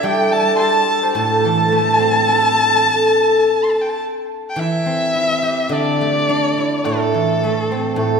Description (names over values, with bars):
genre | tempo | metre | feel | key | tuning
chinese traditional, Chinese chamber ensemble | 106 BPM | 4/4 | rubato | A yu mode | A4 = 440 Hz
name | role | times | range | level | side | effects
bright erhu | melody | 0.0-8.2 s | A4 to C6 | -19 LUFS | left 2 dB | none
hammered dulcimer | second line | 0.0-8.2 s | A3 to D5 | -18 LUFS | right 2 dB | none
large dizi | second line | 0.0-3.6 s | G5 to A5 | -22 LUFS | left 2 dB | none
guzheng | accompaniment | 0.0-8.2 s | A2 to G4 | -21 LUFS | equal | none
room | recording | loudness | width
wet concert hall reverb, RT60 2.3 s | heard from further back in the room | -14 LUFS | side -6 dB against mid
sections
0.0-4.6 A section; 4.6-8.2 B section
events
none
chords
none